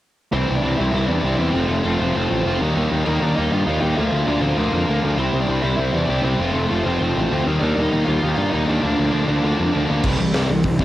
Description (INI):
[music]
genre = punk rock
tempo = 198 BPM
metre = 4/4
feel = straight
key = unclear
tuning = A4 = 438 Hz
[part]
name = biting lead guitar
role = melody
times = 0.3-9.9 s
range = A3 to G5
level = -25 LUFS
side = equal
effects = overdrive, cassette tape
[part]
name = sludgy distorted guitar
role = riff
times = 0.3-10.8 s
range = C3 to F4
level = -21 LUFS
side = equal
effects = overdrive, cassette tape
[part]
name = fuzz picked electric bass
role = bass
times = 0.3-10.8 s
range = F1 to G2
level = -21 LUFS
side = equal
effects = overdrive
[part]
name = big rock drum kit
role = drums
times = 10.0-10.8 s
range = crash cymbal, hi-hat, kick drum, snare drum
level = -22 LUFS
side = equal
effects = none
[sound]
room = little or no reverb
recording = home recording on cassette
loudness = -17 LUFS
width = side -14 dB against mid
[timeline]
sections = 0.3-10.0 A section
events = none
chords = 0.3 C; 1.5 F; 2.6 Eb; 4.0 Bb/D; 5.2 C; 6.4 F; 7.5 Eb; 8.8 Bb/D; 10.0 C